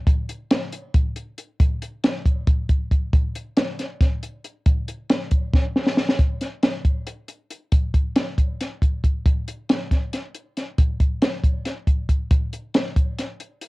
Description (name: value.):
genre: rock.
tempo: 274 BPM (eighths).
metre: 7/8.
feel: straight.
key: none.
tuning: none.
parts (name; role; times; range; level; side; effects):
compact cocktail drum kit; drums; 0.1-13.7 s; hi-hat, kick drum, snare drum; -19 LUFS; equal; none.
room: light reverb.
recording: home recording on cassette.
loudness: -20 LUFS.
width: side -23 dB against mid.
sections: 0.0-6.2 A section; 6.2-13.7 B section.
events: drum fill 5.5-6.2.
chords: none.